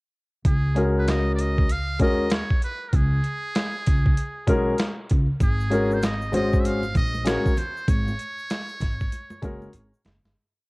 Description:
hip hop, jazz-hop; 97 BPM; 4/4; swing 63% on 16ths; Db major; A4 = 440 Hz
trumpet with metal mute; melody; 0.5-10.1 s; Ab4 to F5; -31 LUFS; right 1 dB; cassette tape
upright bass; bass; 0.5-10.3 s; Gb1 to Eb2; -26 LUFS; equal
boom bap sampler-style drum kit; drums; 0.5-10.4 s; hi-hat, kick drum, snare drum; -23 LUFS; equal; cassette tape
warm grand piano; accompaniment; 0.7-9.7 s; Ab3 to C5; -23 LUFS; left 2 dB
tube shaker and congas; percussion; 5.4-10.4 s; -37 LUFS; right 2 dB
light reverb, small room reverb; home recording on cassette; -21 LUFS; side -25 dB against mid
0.5-10.4 head
fade-out 7.9-10.4; drum fill 9.7-10.4
0.5 Dbsus4; 5.4 Ab9sus4

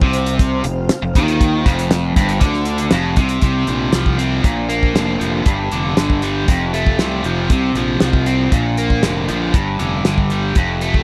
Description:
classic rock; 118 BPM; 4/4; straight; A4 = 439 Hz
ensemble organ-string; sustained chords; 0.0-3.4 s; C4 to F5; -31 LUFS; equal; phaser, ensemble chorus
biting overdriven guitar; riff; 0.0-11.0 s; F2 to C4; -21 LUFS; equal
fuzz fingered electric bass; bass; 0.0-11.0 s; F1 to Eb2; -23 LUFS; equal; overdrive
damped 70s drum kit; drums; 0.0-11.0 s; hi-hat, kick drum, snare drum; -18 LUFS; equal
little or no reverb; dry, close 1970s-style studio recording; -17 LUFS; mono
0.0-3.4 A section; 3.4-11.0 B section
0.0 F5; 3.4 Csus4; 4.4 Bb; 5.5 G5; 6.5 F; 7.5 Csus4; 8.5 Bb; 9.5 G5

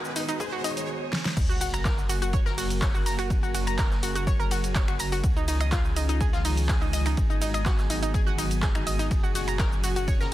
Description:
progressive house; 124 BPM; 4/4; straight; F# major; A4 = 441 Hz
airy breathy pad; sustained chords; 0.0-10.3 s; A#2 to A#4; -34 LUFS; equal; chorus, sidechain pumping
deep house drum kit; drums; 0.0-10.3 s; crash cymbal, finger snaps, handclaps, hi-hat, ride cymbal, shaker, snare drum; -32 LUFS; equal; overdrive
riser and sub drop; sound effects; 0.0-3.3 s; -36 LUFS; equal
drifting glass-harmonics texture; texture; 0.0-10.3 s; G#4 to G#5; -41 LUFS; right 1 dB; chorus, built-in reverb, sidechain pumping
analog pluck; arpeggios; 0.2-10.3 s; D#4 to A#5; -31 LUFS; equal; chorus, sidechain pumping, dub echo
electronic kick drum; drums; 0.4-10.2 s; -26 LUFS; equal; overdrive, high-pass filter on kick
saturated sub bass; bass; 1.4-10.3 s; F#1 to C#2; -29 LUFS; equal; sidechain pumping
street-band drum kit; drums; 1.4-10.3 s; hi-hat, ride cymbal, snare drum; -43 LUFS; equal
light reverb, digital ambience; dense, heavily limited modern master; -23 LUFS; side -14 dB against mid
0.0-1.4 A section; 1.4-10.3 B section
build-up 0.0-1.4; riser 0.0-0.9; drum fill 1.1; drop 1.4-10.3; impact 1.4-3.3
0.0 G#m7; 1.4 F#; 5.2 C#add9; 7.2 G#m7; 9.1 F#

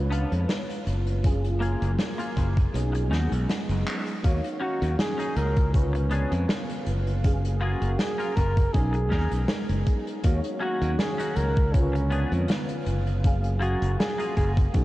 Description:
vaporwave; 80 BPM; 4/4; swing 54% on 16ths; A4 = 440 Hz
FM electric piano with soft pad layer; accompaniment; 0.0-14.8 s; D3 to F5; -33 LUFS; equal; ensemble chorus, analog delay
warbly tape-like pad; sustained chords; 0.0-14.8 s; Eb3 to F5; -37 LUFS; equal; chorus, built-in reverb
modern bright fingered electric bass; bass; 0.0-14.8 s; Gb1 to F2; -25 LUFS; equal
clean electric guitar; riff; 0.1-14.6 s; Bb3 to Bb4; -36 LUFS; left 2 dB; analog chorus, vintage 12-bit sampler grit, analog delay
unplugged drum kit; drums; 0.1-14.8 s; handclaps, hi-hat, snare drum; -32 LUFS; equal; vintage 12-bit sampler grit
electronic kick drum; drums; 1.2-14.8 s; -22 LUFS; equal; vintage 12-bit sampler grit
dark flugelhorn; melody; 4.6-14.8 s; Db4 to Bb4; -31 LUFS; right 1 dB; tape echo
light reverb, studio reverb; cassette tape; -23 LUFS; side -17 dB against mid
0.0-14.8 A section
kick drops out 2.7-4.2; drum fill 3.9-4.2
0.0 Db7b9; 1.2 Gbmaj9; 2.7 B69; 4.2 Ebm7; 5.7 Db7b9; 7.2 Gbmaj9; 8.7 B69; 10.2 Ebm7; 11.7 Db7b9; 13.2 Gbmaj9

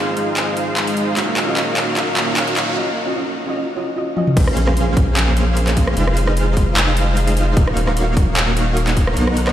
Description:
future bass; 150 BPM; 4/4; swing 54% on 16ths, half-time; A4 = 435 Hz
soft round pluck; accompaniment; 0.0-4.4 s; C4 to Eb5; -26 LUFS; right 1 dB; analog chorus, sidechain pumping, digital delay
dense compressed supersaw; riff; 0.0-9.5 s; Ab3 to F#5; -20 LUFS; right 1 dB; cassette tape, sidechain pumping, low-pass filter, digital delay
riser and impact; sound effects; 0.3-6.0 s; -28 LUFS; equal
trap drum kit; drums; 0.2-9.5 s; crash cymbal, handclaps, hi-hat, rim click, toms; -21 LUFS; equal; overdrive
saturated sub bass; bass; 4.4-9.5 s; Eb1 to B1; -18 LUFS; equal; sidechain pumping
electronic kick drum; drums; 4.4-9.1 s; -16 LUFS; equal; overdrive
moderate shimmer reverb, RT60 4.2 s; played on a big sound system in a bare room, stone room reverb; -15 LUFS; side -11 dB against mid
0.0-4.4 A section; 4.4-9.5 B section
build-up 0.0-4.4; drum fill 0.0-2.8, 4.2; break 2.8-4.4; drop 4.4-9.5; impact 4.4-6.0
0.0 Fm7; 1.2 Ebm9; 2.8 Ebm9/Db; 4.4 Bbm9; 6.0 Fm7; 7.6 Ebm9

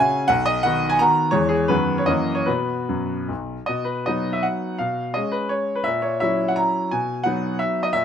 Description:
classical, romantic triple-time dance for piano with dotted rhythms; 138-192 BPM; 3/4; rubato; B major; A4 = 439 Hz
clear grand piano; solo; 0.0-8.0 s; B1 to A#5; -19 LUFS; equal
moderate stone room reverb, RT60 1.2 s; close, detailed microphones; -19 LUFS; side -8 dB against mid
0.0-3.7 A section; 3.7-8.0 B section
0.3 B; 1.3 C#m/E; 1.7 B/F#; 2.1 F#7; 2.5 B5; 3.7 B; 4.8 C#7/B; 5.9 F#7/A#; 6.9 B

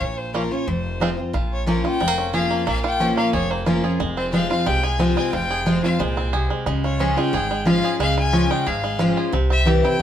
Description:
bluegrass; 180 BPM; 4/4; straight; A4 = 435 Hz
clear fiddle; melody; 0.0-10.0 s; G4 to Ab5; -25 LUFS; left 3 dB; tape echo
picked steel-string acoustic guitar; accompaniment; 0.0-10.0 s; F2 to F4; -21 LUFS; left 1 dB
upright bass; bass; 0.0-10.0 s; F1 to Db2; -26 LUFS; right 1 dB
bluegrass banjo; melody; 0.3-10.0 s; Ab3 to Ab4; -26 LUFS; right 3 dB
moderate studio reverb, RT60 0.6 s; band playing live in one room; -18 LUFS; side -10 dB against mid
0.0-1.3 A section; 1.3-10.0 B section
0.0 Bbm; 0.7 Fm; 1.3 Bbm; 4.0 Fm; 6.7 Db; 9.3 C

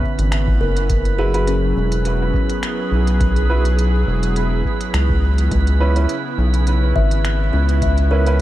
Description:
ambient dub; 104 BPM; 4/4; swing 54% on 16ths; A4 = 440 Hz
airy breathy pad; sustained chords; 0.0-8.4 s; C#3 to G#4; -25 LUFS; right 1 dB; chorus
kalimba; arpeggios; 0.0-3.2, 7.0-8.4 s; C#4 to E5; -26 LUFS; left 3 dB; dub echo
electronic kick drum; drums; 0.0-7.9 s; -21 LUFS; equal; small room ambience
drifting glass-harmonics texture; texture; 0.0-8.4 s; B4; -28 LUFS; right 6 dB; chorus, built-in reverb
round analog bass; bass; 0.2-8.4 s; E1 to C#2; -16 LUFS; equal
organic electronic drum kit; drums; 0.2-8.4 s; finger snaps, hi-hat; -31 LUFS; equal; small room ambience, dub echo
clear upright piano; stabs; 1.2-8.4 s; C#4 to B4; -28 LUFS; right 3 dB; dub echo
little or no reverb; vinyl crackle; -15 LUFS; side -14 dB against mid
0.0-8.4 A section
0.0 C#m7; 0.9 F#7sus4; 5.5 C#m7

